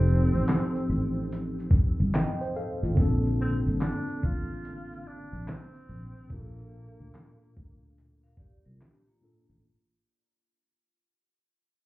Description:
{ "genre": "lo-fi hip hop", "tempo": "72 BPM", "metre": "4/4", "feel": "swing 65% on 16ths", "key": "unclear", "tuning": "A4 = 437 Hz", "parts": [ { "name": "breathy tenor saxophone", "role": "melody", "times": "0.0-8.0 s", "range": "Bb3 to F4", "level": "-38 LUFS", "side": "equal", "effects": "low-pass filter, analog delay, plate reverb" }, { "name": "mellow tine electric piano", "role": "accompaniment", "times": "0.0-9.7 s", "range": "Bb2 to G5", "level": "-32 LUFS", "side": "equal", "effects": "medium stereo tremolo, low-pass filter" }, { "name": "fingered electric bass", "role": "bass", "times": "0.0-9.6 s", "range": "F1 to D2", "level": "-27 LUFS", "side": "equal", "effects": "none" }, { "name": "lo-fi sampler-style drum kit", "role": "drums", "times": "0.1-9.6 s", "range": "handclaps, hi-hat, kick drum, shaker, snare drum", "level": "-25 LUFS", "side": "equal", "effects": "overdrive" }, { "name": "vibraphone with hard mallets", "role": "second line", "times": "8.2-9.6 s", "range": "Bb3 to F5", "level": "-70 LUFS", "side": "equal", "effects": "low-pass filter, analog delay, plate reverb" } ], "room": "light reverb", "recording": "heard muffled through a wall, cassette tape, club reverb, EQ", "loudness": "-25 LUFS", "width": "side -18 dB against mid", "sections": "0.0-9.6 A section", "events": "fade-out 0.0-9.6; tine electric piano fill 1.7-3.0", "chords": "0.0 F7; 3.0 Bbmaj7", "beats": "0.47 1.30 2.13 | 2.96 3.80 4.63 5.46 | 6.30 7.13 7.96 8.80" }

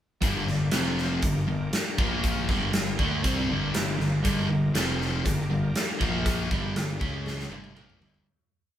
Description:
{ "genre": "classic rock", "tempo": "120 BPM", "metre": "4/4", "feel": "straight", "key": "G minor", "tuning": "A4 = 441 Hz", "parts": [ { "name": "bright tonewheel organ", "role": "sustained chords", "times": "0.2-8.2 s", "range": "G3 to D5", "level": "-40 LUFS", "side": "equal", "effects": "overdrive, chorus vibrato, slow rotary speaker" }, { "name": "overdriven semi-hollow guitar", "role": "riff", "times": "0.2-8.3 s", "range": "F2 to D4", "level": "-30 LUFS", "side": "right 3 dB", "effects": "none" }, { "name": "sludgy distorted guitar", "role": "riff", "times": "0.2-8.3 s", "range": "F2 to D4", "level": "-30 LUFS", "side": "left 3 dB", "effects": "overdrive" }, { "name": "fuzz picked electric bass", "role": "bass", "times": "0.2-8.2 s", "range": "F1 to D2", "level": "-33 LUFS", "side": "equal", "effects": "overdrive" }, { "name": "big rock drum kit", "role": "drums", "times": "0.2-8.3 s", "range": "hi-hat, kick drum, snare drum, toms", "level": "-28 LUFS", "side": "equal", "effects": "none" }, { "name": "cowbell", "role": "percussion", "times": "4.2-7.9 s", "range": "none", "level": "-44 LUFS", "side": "left 3 dB", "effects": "none" } ], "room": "moderate studio reverb, RT60 0.8 s", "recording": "band playing live in one room", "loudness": "-24 LUFS", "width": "side -11 dB against mid", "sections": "0.2-8.3 riff", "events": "fade-out 6.2-8.3; drum fill 7.3-8.3", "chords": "0.2 Gm; 0.7 F5; 1.2 Gm; 2.0 Bb5; 2.5 Gm; 4.7 F5; 5.2 Gm; 6.0 Bb5; 6.5 Gm; 7.0 C#5; 7.5 Gm", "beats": "| 0.21 0.72 1.22 1.73 | 2.23 2.73 3.24 3.74 | 4.24 4.75 5.25 5.75 | 6.25 6.75 7.25 7.75" }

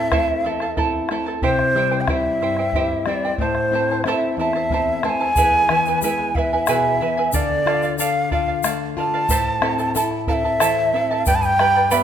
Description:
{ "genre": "andean folk, Andean ensemble", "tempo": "61 BPM (dotted quarters)", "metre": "6/8", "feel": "straight", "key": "A minor", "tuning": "A4 = 440 Hz", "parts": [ { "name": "breathy bright large quena", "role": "melody", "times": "0.0-12.0 s", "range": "C5 to A5", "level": "-20 LUFS", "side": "equal", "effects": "none" }, { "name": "charango", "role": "accompaniment", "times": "0.0-12.0 s", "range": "E4 to B5", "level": "-23 LUFS", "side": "right 5 dB", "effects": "none" }, { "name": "nylon-string guitar", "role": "accompaniment", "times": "0.0-12.0 s", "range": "E2 to A4", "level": "-25 LUFS", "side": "left 6 dB", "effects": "none" }, { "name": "bombo", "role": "percussion", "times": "0.1-11.7 s", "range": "none", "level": "-25 LUFS", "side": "left 1 dB", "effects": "none" }, { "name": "egg shaker", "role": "percussion", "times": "5.4-12.0 s", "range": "none", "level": "-29 LUFS", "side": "left 7 dB", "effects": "none" } ], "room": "moderate recital hall reverb, RT60 1.4 s", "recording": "minimal, uncompressed stereo recording", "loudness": "-17 LUFS", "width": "side -9 dB against mid", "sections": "0.0-5.4 A section; 5.4-12.0 B section", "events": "none", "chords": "0.0 Am; 1.4 C; 3.4 Am; 5.4 E; 7.3 Dm; 9.3 Am; 11.3 G", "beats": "0.45 | 1.43 2.42 | 3.40 4.38 | 5.37 6.35 | 7.33 8.32 | 9.30 10.28 | 11.27" }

